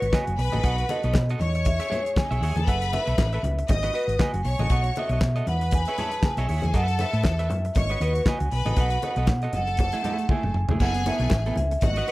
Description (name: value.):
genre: disco.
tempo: 118 BPM.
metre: 4/4.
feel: swing 56% on 16ths.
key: F# dorian.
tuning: A4 = 438 Hz.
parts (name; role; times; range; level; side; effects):
vibraphone with soft mallets; melody; 0.0-12.1 s; B4 to A5; -29 LUFS; right 1 dB; none.
bright studio string section; second line; 0.0-12.1 s; C#4 to D#6; -33 LUFS; left 3 dB; none.
electric guitar at the edge of break-up; accompaniment; 0.0-12.1 s; A3 to E5; -33 LUFS; right 4 dB; spring reverb.
hollow-body short-scale fingered electric bass; bass; 0.0-12.0 s; E1 to B2; -25 LUFS; equal; none.
damped 70s drum kit; drums; 0.0-12.1 s; crash cymbal, handclaps, hi-hat, kick drum, snare drum, toms; -24 LUFS; equal; none.
congas; percussion; 0.1-12.0 s; none; -33 LUFS; left 3 dB; none.
room: little or no reverb.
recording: dry, close 1970s-style studio recording.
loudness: -22 LUFS.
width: side -18 dB against mid.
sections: 0.0-10.8 A section; 10.8-12.1 A section.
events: drum fill 10.3-10.8.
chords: 0.4 B7; 1.4 E6; 2.7 F#m7; 3.7 G#m7; 4.5 B7; 5.5 E6; 6.7 F#m7; 7.8 G#m7; 8.5 B7; 9.5 F#m9; 10.8 F#m11.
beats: 0.13 | 0.64 1.15 1.65 2.16 | 2.67 3.18 3.69 4.20 | 4.71 5.21 5.72 6.23 | 6.74 7.25 7.76 8.27 | 8.77 9.28 9.79 10.30 | 10.80 11.31 11.82.